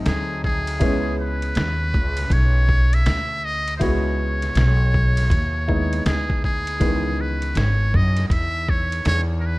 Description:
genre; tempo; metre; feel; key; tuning
hip hop, jazz-hop; 80 BPM; 4/4; swing 64% on 16ths; C# minor; A4 = 441 Hz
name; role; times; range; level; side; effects
warm upright piano; accompaniment; 0.0-9.6 s; D#3 to F#4; -28 LUFS; equal; none
trumpet with metal mute; melody; 0.1-9.6 s; G#4 to E5; -25 LUFS; equal; none
upright bass; bass; 0.1-9.6 s; G#1 to F#2; -20 LUFS; equal; none
trip hop sampler-style drum kit; drums; 0.1-9.3 s; hi-hat, kick drum, ride cymbal, snare drum; -24 LUFS; equal; none
room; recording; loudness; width
small room reverb; rough home demo mix; -18 LUFS; side -20 dB against mid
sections
0.0-6.8 A section; 6.8-9.6 A section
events
none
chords
0.0 G#7b9; 0.8 C#m9

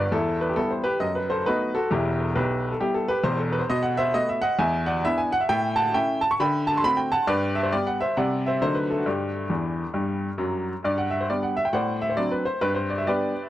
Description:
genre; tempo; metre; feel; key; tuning
jazz, stride piano; 134 BPM; 4/4; swing 62% on 8ths; G major; A4 = 440 Hz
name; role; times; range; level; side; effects
clear upright piano; solo; 0.0-13.5 s; E1 to C#6; -22 LUFS; equal; analog delay
room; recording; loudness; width
light reverb; dry, gritty hardware recording; -22 LUFS; side -13 dB against mid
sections
0.0-10.8 A section; 10.8-13.5 A section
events
upright piano fill 9.5-10.8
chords
0.1 Em; 1.0 B7/F#; 1.9 Em; 3.7 B7; 4.6 E5; 5.5 A; 6.4 D7; 7.3 G; 8.2 C; 8.6 D; 9.1 G5; 10.8 G; 11.7 D7/A; 12.6 G

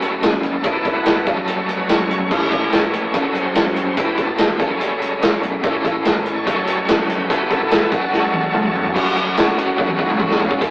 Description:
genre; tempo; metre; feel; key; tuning
classic rock; 144 BPM; 4/4; straight; unclear; A4 = 443 Hz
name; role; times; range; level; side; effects
bright tonewheel organ; sustained chords; 0.0-10.7 s; E3 to F#5; -24 LUFS; equal; slow rotary speaker, overdrive
overdriven electric guitar; riff; 0.0-10.7 s; E2 to A4; -20 LUFS; equal; tremolo
fingered electric bass; bass; 0.0-10.7 s; E1 to E2; -36 LUFS; equal; none
vintage drum kit; drums; 0.0-10.7 s; crash cymbal, hi-hat, kick drum, snare drum, tambourine, toms; -18 LUFS; equal; none
room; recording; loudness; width
moderate stone room reverb, RT60 1.3 s; rough rehearsal-room recording, tube saturation, AM radio sound; -15 LUFS; side -23 dB against mid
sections
0.0-9.0 A section; 9.0-10.6 B section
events
drum fill 8.1-9.0, 9.8-10.6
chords
0.0 F#m; 0.6 Esus4; 1.3 F#m; 2.3 A; 3.1 F#m; 4.0 Esus4; 4.6 F#m; 5.6 A; 6.5 F#m; 7.3 Esus4; 7.9 F#m

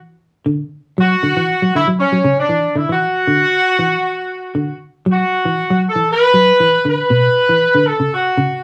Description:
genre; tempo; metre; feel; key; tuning
afrobeat; 117 BPM; 4/4; straight; B minor; A4 = 440 Hz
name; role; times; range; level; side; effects
semi-hollow electric guitar; arpeggios; 0.5-8.6 s; B2 to F#3; -20 LUFS; equal; none
warm horn section; melody; 1.0-8.6 s; C#4 to B4; -16 LUFS; equal; none
room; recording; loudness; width
moderate small room reverb, RT60 0.5 s; band playing live in one room; -15 LUFS; mono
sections
0.0-5.1 A section; 5.1-8.6 B section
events
none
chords
0.0 Bmadd11 (rootless); 5.1 Bmadd9

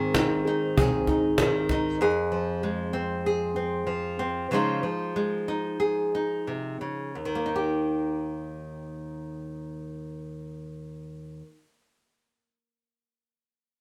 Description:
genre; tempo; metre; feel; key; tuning
acoustic folk duo or small band; 87-97 BPM; 4/4; straight; Eb major; A4 = 440 Hz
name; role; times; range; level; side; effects
nylon-string guitar; accompaniment; 0.0-11.6 s; Eb2 to Ab4; -29 LUFS; equal; none
felt-muted upright piano; arpeggios; 0.0-2.1 s; C4 to Ab4; -30 LUFS; equal; none
cajon; percussion; 0.1-1.8 s; none; -28 LUFS; equal; none
room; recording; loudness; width
light reverb; none; -27 LUFS; mono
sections
0.0-7.1 A section; 7.1-9.9 B section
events
slowing down 2.0-7.1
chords
0.0 Ab; 2.0 Fm; 4.5 Dbadd9; 7.1 Eb

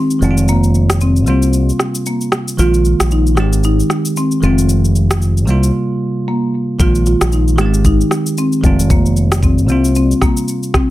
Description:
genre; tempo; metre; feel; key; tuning
afrobeats; 114 BPM; 4/4; swing 58% on 16ths; F minor; A4 = 443 Hz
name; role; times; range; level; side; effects
marimba with medium mallets; melody; 0.0-10.9 s; Bb3 to F4; -18 LUFS; left 2 dB; plate reverb, tape echo
bell-like tine electric piano; accompaniment; 0.0-10.9 s; C3 to G4; -18 LUFS; right 3 dB; plate reverb
afro-pop drum kit; drums; 0.1-10.9 s; kick drum, rim click, shaker; -17 LUFS; equal; none
fingered electric bass with an envelope filter; bass; 0.2-10.1 s; F1 to C2; -13 LUFS; equal; none
room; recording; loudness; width
light reverb; none; -11 LUFS; side -15 dB against mid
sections
0.0-10.9 A section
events
break 0.0-6.8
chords
0.2 Fm7; 1.3 C7sus4; 2.6 Bb7sus4; 3.4 Abmaj7; 4.4 Fm7; 5.5 C7sus4; 6.8 Bb7sus4; 7.6 Abmaj7; 8.6 Fm7; 9.7 C7sus4

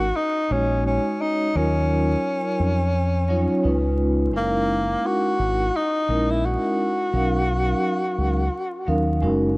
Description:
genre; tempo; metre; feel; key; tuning
hip hop, jazz-hop; 86 BPM; 4/4; swing 58% on 16ths; F# major; A4 = 440 Hz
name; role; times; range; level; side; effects
breathy tenor saxophone; melody; 0.0-9.2 s; A#3 to F#4; -24 LUFS; left 1 dB; none
vibraphone with soft mallets; accompaniment; 0.0-9.6 s; F#3 to E#5; -24 LUFS; equal; none
deep dub fingered electric bass; bass; 0.0-9.6 s; F#1 to E#2; -23 LUFS; equal; none
room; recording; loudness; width
light reverb, small room ambience; worn, warbling old tape, cassette tape, vinyl crackle, warbly pitch drift; -19 LUFS; side -24 dB against mid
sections
0.0-9.6 A section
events
none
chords
0.0 F#6; 1.6 D#m9; 3.6 C#9; 4.3 F#13; 7.1 Bmaj9#11

